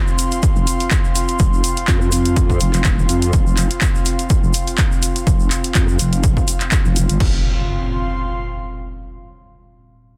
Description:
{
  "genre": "bass house",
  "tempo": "124 BPM",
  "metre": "4/4",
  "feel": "swing 55% on 16ths",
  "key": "unclear",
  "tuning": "A4 = 440 Hz",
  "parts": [
    { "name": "airy breathy pad", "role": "texture", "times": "0.0-9.1 s", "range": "C4 to C6", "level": "-28 LUFS", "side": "equal", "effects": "chorus, sidechain pumping" },
    { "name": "tube shaker", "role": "percussion", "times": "0.1-7.2 s", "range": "none", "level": "-31 LUFS", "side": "equal", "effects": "none" },
    { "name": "house drum kit", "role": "drums", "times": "0.2-7.3 s", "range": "crash cymbal, handclaps, hi-hat", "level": "-26 LUFS", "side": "equal", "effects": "none" },
    { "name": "electronic kick drum", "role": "drums", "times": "0.4-7.3 s", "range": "none", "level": "-19 LUFS", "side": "equal", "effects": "overdrive" },
    { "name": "vowel-sweep wobble bass", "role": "bass", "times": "0.6-7.4 s", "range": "Eb1 to F2", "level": "-20 LUFS", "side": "equal", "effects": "chorus, overdrive, sidechain pumping" },
    { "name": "impact", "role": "sound effects", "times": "7.2-9.1 s", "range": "none", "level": "-26 LUFS", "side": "equal", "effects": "none" }
  ],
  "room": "little or no reverb",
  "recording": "dense, heavily limited modern master",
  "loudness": "-17 LUFS",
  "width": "mono",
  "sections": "0.0-7.2 A section; 7.2-9.1 B section",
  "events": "none",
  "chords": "0.0 F5",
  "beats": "0.43 0.91 | 1.40 1.88 2.37 2.85 | 3.33 3.82 4.30 4.78 | 5.27 5.75 6.24 6.72 | 7.20 7.69 8.17 8.65"
}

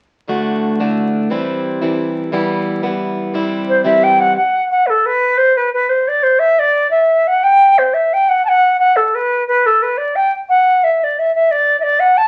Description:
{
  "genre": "celtic folk, Celtic jig",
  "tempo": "118 BPM (dotted quarters)",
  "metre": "6/8",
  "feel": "straight",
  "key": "unclear",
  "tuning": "A4 = 439 Hz",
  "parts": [
    { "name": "picked plugged-in swing-style acoustic guitar", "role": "accompaniment", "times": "0.3-4.4 s", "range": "D2 to F#4", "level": "-19 LUFS", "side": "equal", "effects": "none" },
    { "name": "bright wooden flute", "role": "melody", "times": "3.7-12.3 s", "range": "A4 to A5", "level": "-14 LUFS", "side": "equal", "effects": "none" }
  ],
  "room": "wet studio reverb, RT60 0.5 s",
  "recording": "very old 78 rpm record, vinyl crackle",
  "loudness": "-15 LUFS",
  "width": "mono",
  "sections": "0.3-4.4 A section; 4.4-12.3 B section",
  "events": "none",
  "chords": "0.3 D; 1.3 C; 2.3 Em; 3.3 C; 4.4 N.C.",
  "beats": "| 0.28 0.80 | 1.30 1.81 | 2.33 2.83 | 3.34 3.85 | 4.36 4.87 | 5.38 5.89 | 6.40 6.91 | 7.42 7.93 | 8.44 8.95 | 9.46 9.97 | 10.48 10.99 | 11.49 12.00"
}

